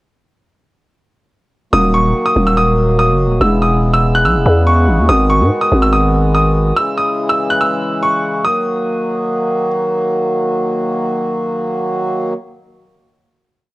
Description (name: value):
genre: hip hop, drill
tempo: 143 BPM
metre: 4/4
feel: half-time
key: Eb phrygian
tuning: A4 = 440 Hz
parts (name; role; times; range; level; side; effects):
- bright grand piano; melody; 1.7-9.7 s; Db6 to Gb6; -16 LUFS; right 1 dB; none
- hand-pumped harmonium; sustained chords; 1.7-12.3 s; C#3 to Gb4; -17 LUFS; equal; none
- growling 808-style bass; bass; 1.7-6.7 s; Eb1 to Ab2; -13 LUFS; equal; none
room: studio ambience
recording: worn, warbling old tape, cassette tape, warbly pitch drift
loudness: -12 LUFS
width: side -19 dB against mid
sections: 1.7-8.4 hook; 8.4-11.8 final chord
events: none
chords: 1.7 Ebm; 3.4 E6; 5.1 Abm7; 6.8 Dbm; 8.4 Ebm